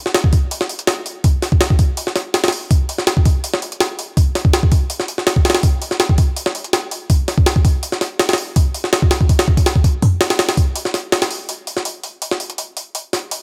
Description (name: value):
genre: drum and bass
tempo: 164 BPM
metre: 4/4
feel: straight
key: none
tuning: none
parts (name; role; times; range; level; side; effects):
- jungle sampler-style drum kit; drums; 0.1-13.4 s; hi-hat, kick drum, snare drum; -17 LUFS; equal; none
room: digital ambience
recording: none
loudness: -17 LUFS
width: mono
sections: 0.0-11.5 A section; 11.5-13.4 B section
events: none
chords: none